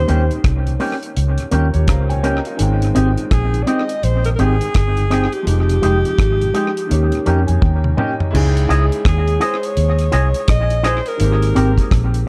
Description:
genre	lovers rock reggae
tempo	84 BPM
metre	4/4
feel	swing 61% on 16ths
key	Ab major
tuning	A4 = 438 Hz
part	breathy alto saxophone	melody	0.0-12.1 s	G4 to Eb5	-24 LUFS	equal	tape echo
part	mellow tonewheel organ	accompaniment	0.0-8.1 s	Eb2 to G4	-33 LUFS	equal	none
part	warm grand piano	accompaniment	0.0-12.3 s	Eb3 to Bb5	-27 LUFS	equal	tape echo
part	vintage muted fingered electric bass	bass	0.0-12.2 s	F1 to F2	-18 LUFS	equal	none
part	electric guitar with an envelope filter	stabs	0.1-11.7 s	Ab3 to Eb5	-24 LUFS	equal	tape echo
part	deep reggae drum kit	drums	0.1-12.3 s	crash cymbal, hi-hat, kick drum, rim click, toms	-22 LUFS	equal	tape echo
room	light reverb, small room ambience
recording	dark, warm production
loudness	-16 LUFS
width	mono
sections	0.0-8.3 A section; 8.3-12.3 B section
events	grand piano fill 1.5-2.6, 6.9-8.3; drum fill 7.6-8.3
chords	0.0 Eb7; 2.6 Abmaj7; 5.5 Fm9; 6.9 Eb7; 8.3 Dbmadd9; 11.2 Abmaj9

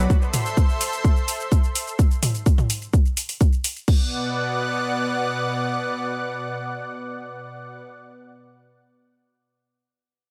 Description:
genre	melodic techno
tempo	127 BPM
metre	4/4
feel	straight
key	B phrygian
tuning	A4 = 441 Hz
part	lush unison pad	sustained chords	0.0-7.8 s	B2 to C6	-29 LUFS	equal	chorus, sidechain pumping
part	electronic kick drum	drums	0.1-4.0 s	none	-20 LUFS	equal	none
part	house drum kit	drums	0.1-4.0 s	crash cymbal, hi-hat, shaker, toms	-28 LUFS	equal	sidechain pumping on perc, sidechain pumping on hats, sidechain pumping on toms, sidechain pumping on cymbals
room	light reverb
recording	none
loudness	-22 LUFS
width	mono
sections	0.0-3.9 A section; 3.9-7.7 B section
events	drop 0.0-3.9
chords	0.1 Am; 2.0 N.C.; 3.9 Bm

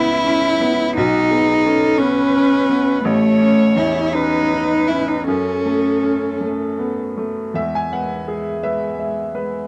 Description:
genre	neoclassical piano and strings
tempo	52-59 BPM (dotted quarters)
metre	6/8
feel	rubato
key	E major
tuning	A4 = 441 Hz
part	warm cello	second line	0.0-9.7 s	G#3 to E4	-20 LUFS	equal	none
part	clear upright piano	accompaniment	0.0-9.7 s	A1 to G#5	-24 LUFS	equal	none
part	warm viola	accompaniment	0.0-7.0 s	E4 to C#5	-24 LUFS	equal	none
room	little or no reverb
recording	dry, close 1970s-style studio recording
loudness	-18 LUFS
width	mono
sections	0.0-7.6 A section; 7.6-9.7 B section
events	none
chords	0.0 C#m7; 1.0 Bsus2; 3.0 A; 5.3 F#m; 7.6 E

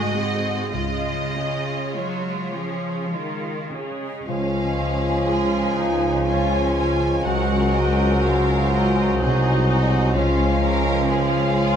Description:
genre	classical, slow romantic movement for symphony orchestra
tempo	48-65 BPM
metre	3/4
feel	rubato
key	Db major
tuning	A4 = 436 Hz
part	rich studio violin section	melody	0.0-11.8 s	Db5 to Ab5	-31 LUFS	equal	none
part	rich studio violin section	second line	0.0-11.8 s	F4 to Bb4	-30 LUFS	left 1 dB	none
part	rich studio viola section	accompaniment	0.0-11.8 s	Ab3 to Ab4	-28 LUFS	right 1 dB	none
part	concert harp	arpeggios	0.0-11.8 s	Ab2 to Ab5	-30 LUFS	left 5 dB	none
part	bright symphonic cello section	bass	0.0-11.8 s	C2 to Gb3	-28 LUFS	right 1 dB	none
part	rich studio double bass section	bass	0.0-11.8 s	Ab1 to Db2	-26 LUFS	equal	none
part	large flute ensemble	second line	4.3-11.8 s	Ab5	-30 LUFS	left 3 dB	none
part	mellow clarinet	second line	4.3-11.8 s	C5 to Db5	-31 LUFS	equal	none
part	warm bassoon	accompaniment	4.3-11.8 s	F3 to Gb3	-27 LUFS	right 2 dB	none
part	mellow French horn section	sustained chords	4.3-11.8 s	Ab3 to Gb4	-25 LUFS	left 1 dB	none
part	mellow tuba	bass	4.3-11.8 s	C2 to Db2	-26 LUFS	right 4 dB	none
room	wet stone room reverb, RT60 1.3 s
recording	none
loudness	-19 LUFS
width	side -8 dB against mid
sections	0.0-4.3 A section; 4.3-11.8 B section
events	none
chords	0.0 Ab7b9; 0.7 Db; 7.3 Ab7/Db; 10.2 Db

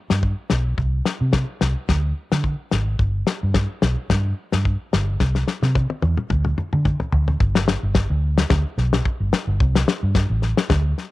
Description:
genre	highlife guitar band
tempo	109 BPM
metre	4/4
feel	swing 55% on 16ths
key	G major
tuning	A4 = 439 Hz
part	vintage muted fingered electric bass	bass	0.1-10.9 s	G1 to D3	-20 LUFS	equal	none
part	damped 70s drum kit	drums	0.1-11.1 s	kick drum, snare drum, toms	-21 LUFS	left 3 dB	none
room	little or no reverb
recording	1960s-style stereo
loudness	-18 LUFS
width	side -17 dB against mid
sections	0.0-7.4 A section; 7.4-11.1 B section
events	drum fill 5.2-7.4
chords	none

